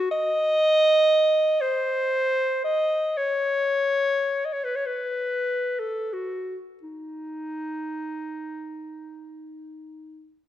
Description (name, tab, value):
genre	classical, free, expressive piece for unaccompanied clarinet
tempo	21-41 BPM (dotted quarters)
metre	6/8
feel	rubato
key	unclear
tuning	A4 = 440 Hz
part	mellow clarinet	solo	0.0-10.3 s	D#4 to D#5	-23 LUFS	equal	none
room	light reverb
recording	none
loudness	-22 LUFS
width	side -12 dB against mid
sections	0.0-10.5 A section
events	none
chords	none